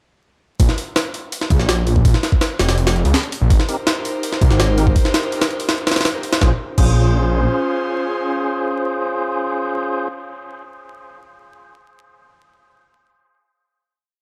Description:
drum and bass, jungle; 165 BPM; 4/4; straight; Bb dorian; A4 = 440 Hz
detuned saw bass; bass; 0.6-7.5 s; F1 to Db2; -19 LUFS; equal
jungle sampler-style drum kit; drums; 0.6-6.9 s; crash cymbal, hi-hat, kick drum, snare drum; -19 LUFS; equal
airy breathy pad; sustained chords; 3.5-9.8 s; Db4 to C5; -27 LUFS; equal; chorus, vintage 12-bit sampler grit
tonewheel organ; stabs; 3.7-10.1 s; C4 to C5; -25 LUFS; equal; overdrive, fast rotary speaker, dub echo
digital ambience; vinyl crackle; -18 LUFS; mono
0.6-6.4 drop; 6.4-9.3 final chord
drop 0.6-6.4
0.6 Bb5; 3.5 Abmaj7; 6.4 Bbm7
| 0.59 0.96 1.32 1.69 | 2.05 2.41 2.78 3.14 | 3.50 3.87 4.23 4.59 | 4.96 5.32 5.69 6.05 | 6.41 6.78 7.14 7.50 | 7.87 8.23 8.60 8.96

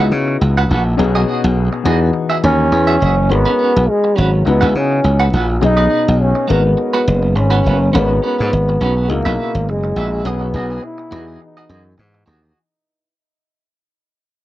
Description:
disco; 104 BPM; 4/4; swing 56% on 16ths; G# minor; A4 = 438 Hz
clean electric guitar; accompaniment; 0.0-12.6 s; B3 to F#5; -22 LUFS; right 4 dB; tremolo
warm baby grand piano; accompaniment; 0.0-12.6 s; B2 to C#5; -22 LUFS; left 6 dB
slap bass; bass; 0.0-12.5 s; F#1 to C#3; -15 LUFS; equal
breathy trombone; melody; 2.4-12.0 s; F#3 to E4; -17 LUFS; equal; tape echo
little or no reverb; dry, close 1970s-style studio recording; -12 LUFS; side -15 dB against mid
0.0-7.9 A section; 7.9-12.6 B section
fade-out 7.9-12.6
0.0 C#m11; 1.0 B6; 1.9 Emaj9; 3.3 G#m11; 4.5 C#m11; 5.6 B6; 6.5 G#m9; 7.9 G#m11; 9.1 C#m11; 10.3 B6; 11.1 Emaj9
0.41 | 0.99 1.57 2.15 2.72 | 3.30 3.88 4.46 5.04 | 5.62 6.20 6.78 7.36 | 7.94 8.52 9.09 9.67 | 10.25 10.83 11.41 11.98

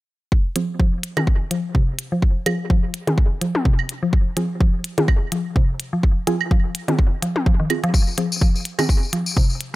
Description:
minimal techno; 126 BPM; 4/4; swing 57% on 16ths; F minor; A4 = 440 Hz
electronic kick drum; drums; 0.3-9.5 s; -17 LUFS; equal
mallet-like synth pluck; riff; 0.6-9.4 s; C3 to F3; -24 LUFS; equal; chorus, sidechain pumping, dub echo
filtered dub chord stab; stabs; 0.6-8.8 s; C4 to Ab4; -26 LUFS; right 2 dB; chorus, vintage 12-bit sampler grit, dub echo
electronic hi-hat; drums; 0.6-9.7 s; -28 LUFS; left 1 dB
electronic toms and claves; percussion; 1.2-8.9 s; -26 LUFS; equal; dub echo
tambourine; percussion; 7.9-9.6 s; -27 LUFS; left 4 dB
little or no reverb; -18 LUFS; side -18 dB against mid
0.3-9.8 A section
filter sweep on synth arpeggio sound 0.3-9.8; filter sweep on synth stab 0.3-9.8
0.3 Fm
| 0.32 0.80 1.27 1.75 | 2.22 2.70 3.18 3.65 | 4.13 4.61 5.08 5.56 | 6.03 6.51 6.99 7.46 | 7.94 8.41 8.89 9.37

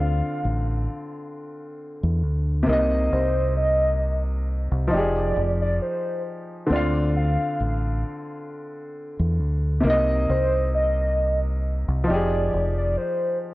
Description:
hip hop; 67 BPM; 4/4; swing 55% on 16ths; D phrygian; A4 = 440 Hz
warbly nostalgic lead; melody; 0.0-13.4 s; C5 to F5; -26 LUFS; equal; chorus, low-pass filter, analog delay
clear upright piano; accompaniment; 0.0-13.5 s; C3 to F5; -26 LUFS; left 1 dB; low-pass filter
deep dub fingered electric bass; bass; 0.0-13.0 s; F1 to E2; -23 LUFS; equal
moderate studio reverb, RT60 0.5 s; worn, warbling old tape, cassette tape, warbly pitch drift; -21 LUFS; side -18 dB against mid
0.0-13.5 A section
0.0 Dm7; 2.7 Cm7; 4.9 Fm9; 6.7 Dm7; 9.8 Cm7; 12.1 Fm9
0.44 1.33 2.23 | 3.12 4.02 4.92 5.81 | 6.71 7.60 8.50 9.39 | 10.29 11.18 12.08 12.97

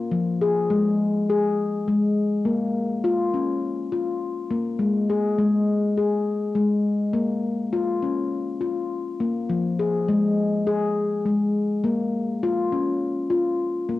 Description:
world meditative, meditative tuned percussion; 102 BPM; 4/4; swing 55% on 16ths; Bb minor pentatonic; A4 = 440 Hz
handpan; solo; 0.0-14.0 s; F3 to Ab4; -21 LUFS; left 2 dB; cassette tape
wet spring reverb, RT60 2.3 s; home recording on cassette; -21 LUFS; side -16 dB against mid
0.0-14.0 A section
0.1 Fm; 2.5 Bbm; 4.8 Absus2; 7.1 Bbm; 9.5 Fm; 11.8 Bbm
| 0.11 0.70 1.29 1.87 | 2.46 3.04 3.63 4.22 | 4.80 5.39 5.97 6.56 | 7.15 7.73 8.32 8.90 | 9.49 10.08 10.66 11.25 | 11.84 12.42 13.01 13.60

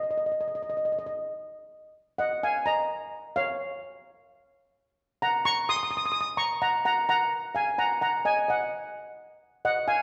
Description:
calypso; 129 BPM; 4/4; straight; Db major; A4 = 439 Hz
steel pan; solo; 0.0-10.0 s; Db5 to Eb6; -28 LUFS; equal
wet recital hall reverb, RT60 1.7 s; recorded in a church or concert hall; -28 LUFS; mono
0.0-1.7 A section; 1.7-10.0 B section
0.0 N.C.; 1.7 Db69 (rootless); 3.6 Db; 5.5 Gb; 7.3 Ebm; 9.2 Dbadd9 (rootless)
0.33 0.79 1.26 | 1.73 2.19 2.66 3.12 | 3.59 4.05 4.52 4.99 | 5.45 5.92 6.38 6.85 | 7.31 7.78 8.24 8.71 | 9.17 9.64

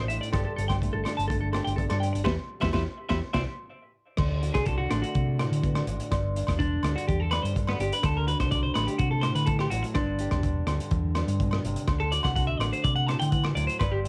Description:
highlife guitar band; 125 BPM; 4/4; straight; G major; A4 = 440 Hz
nylon-string guitar; accompaniment; 0.0-14.1 s; G2 to G4; -36 LUFS; equal; cassette tape
semi-hollow electric guitar; arpeggios; 0.0-14.0 s; B3 to A5; -33 LUFS; equal; cassette tape, analog delay
hollow-body short-scale fingered electric bass; bass; 0.0-14.1 s; E1 to D3; -31 LUFS; equal
crunchy breakbeat drum kit; drums; 0.1-14.1 s; crash cymbal, hi-hat, kick drum, rim click, snare drum; -33 LUFS; equal; cassette tape
agogo bells; percussion; 0.3-13.9 s; -41 LUFS; equal
little or no reverb; home recording on cassette; -27 LUFS; mono
0.0-4.2 A section; 4.2-14.1 B section
band accent 2.3-4.2; clean electric guitar solo 4.2-14.1
0.3 Gsus2; 2.3 Em; 3.2 Cadd9; 4.2 D; 6.1 G5; 8.0 D; 10.0 G; 11.9 D
| 0.34 0.82 1.30 1.78 | 2.26 2.75 3.23 3.71 | 4.19 4.67 5.15 5.63 | 6.11 6.59 7.08 7.55 | 8.04 8.52 9.00 9.48 | 9.96 10.44 10.92 11.40 | 11.88 12.36 12.85 13.33 | 13.81

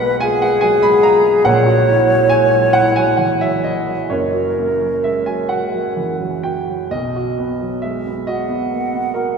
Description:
classical, romantic duo for flute and grand piano; 42-48 BPM (dotted quarters); 6/8; rubato; A4 = 440 Hz
mellow hollow silver concert flute; melody; 0.0-9.4 s; G#4 to F#5; -16 LUFS; left 1 dB
warm grand piano; accompaniment; 0.0-9.4 s; F#1 to B5; -17 LUFS; right 2 dB
wet church reverb, RT60 3.1 s; recorded in a church or concert hall; -14 LUFS; side -6 dB against mid
0.0-9.4 A section
0.0 G#m13/B; 1.5 F#7/A#; 4.1 F#; 6.9 B
0.21 | 1.46 2.74 | 4.11 5.51 | 6.91 8.28

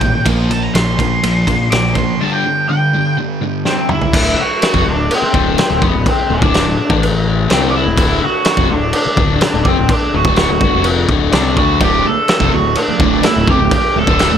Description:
quiet-loud alternative rock; 125 BPM; 4/4; straight; A4 = 440 Hz
octave-fuzz lead guitar; melody; 0.0-14.4 s; B3 to D6; -17 LUFS; equal; distortion, tape echo
twelve-string electric guitar; arpeggios; 0.0-4.1 s; Eb2 to Bb3; -23 LUFS; right 2 dB
sludgy distorted guitar; riff; 0.0-14.4 s; D2 to D4; -19 LUFS; left 9 dB; overdrive
thick fuzz guitar; riff; 0.0-4.1, 11.8-14.4 s; D2 to Bb3; -20 LUFS; right 12 dB; distortion
growling picked electric bass; bass; 0.0-14.4 s; D1 to D2; -19 LUFS; equal; overdrive
loose indie drum kit; drums; 0.0-14.3 s; crash cymbal, kick drum, ride cymbal, snare drum, toms; -16 LUFS; equal
tonewheel organ; sustained chords; 4.1-14.4 s; D3 to A4; -27 LUFS; right 2 dB
light reverb, studio reverb; -11 LUFS; side -8 dB against mid
0.0-4.1 A section; 4.1-14.4 B section
lead electric guitar solo 0.0-4.1; drum fill 3.7-4.1
0.3 Bb5; 2.2 G5; 4.1 D; 6.9 A5; 7.5 D
| 0.27 0.75 1.24 1.72 | 2.20 2.69 3.17 3.65 | 4.14 4.62 5.10 5.58 | 6.06 6.54 7.03 7.50 | 7.98 8.46 8.94 9.42 | 9.90 10.38 10.86 11.34 | 11.81 12.29 12.77 13.24 | 13.72 14.20

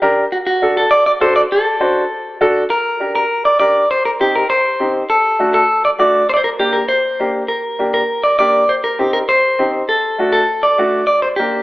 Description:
latin; 200 BPM; 4/4; straight; G harmonic minor; A4 = 440 Hz
warm upright piano; accompaniment; 0.0-11.6 s; A3 to C5; -18 LUFS; equal
clean electric guitar; melody; 0.3-11.6 s; F#4 to D5; -14 LUFS; equal; spring reverb, slapback echo
moderate plate reverb, RT60 2.8 s; telephone sound; -12 LUFS; side -18 dB against mid
0.0-2.7 A section; 2.7-11.6 B section
0.3 D; 2.7 Gm; 3.9 Cm; 5.1 D; 6.3 Gm; 8.7 Cm; 9.9 D; 11.1 Gm
0.02 | 0.32 0.61 0.91 1.21 | 1.51 1.81 2.11 2.41 | 2.71 3.01 3.31 3.60 | 3.90 4.20 4.50 4.80 | 5.10 5.40 5.70 6.00 | 6.30 6.60 6.90 7.20 | 7.50 7.80 8.10 8.40 | 8.70 9.00 9.29 9.60 | 9.89 10.19 10.49 10.79 | 11.09 11.39

